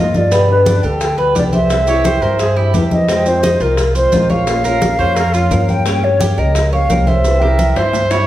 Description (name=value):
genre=latin, Cuban son and guajira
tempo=173 BPM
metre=4/4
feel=straight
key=unclear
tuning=A4 = 440 Hz
part: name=mellow hollow silver concert flute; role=melody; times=0.0-8.3 s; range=A4 to G5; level=-17 LUFS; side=right 1 dB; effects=tape echo
part: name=fingerpicked old ladder-braced acoustic guitar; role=accompaniment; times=0.0-8.3 s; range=B2 to G4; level=-21 LUFS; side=left 3 dB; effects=none
part: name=Cuban tres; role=arpeggios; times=0.0-8.3 s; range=B3 to Db5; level=-20 LUFS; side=right 1 dB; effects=none
part: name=upright bass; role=bass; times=0.0-8.2 s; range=Bb1 to G2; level=-17 LUFS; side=equal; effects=none
part: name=bongos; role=percussion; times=0.1-8.2 s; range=none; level=-24 LUFS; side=left 4 dB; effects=none
part: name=congas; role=percussion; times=0.1-8.3 s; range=none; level=-21 LUFS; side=equal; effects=none
part: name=maracas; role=percussion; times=0.1-8.3 s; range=none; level=-31 LUFS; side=right 4 dB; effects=none
part: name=warm trumpet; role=second line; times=1.9-8.3 s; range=F4 to Db5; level=-22 LUFS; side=right 2 dB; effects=none
room=wet large studio reverb, RT60 1.0 s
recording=heard from further back in the room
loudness=-11 LUFS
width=side -13 dB against mid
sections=0.0-8.3 A section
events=drum fill 7.2-8.3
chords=0.3 G; 1.7 C; 3.1 Fm7; 4.5 Bbm; 5.9 Gdim; 7.2 C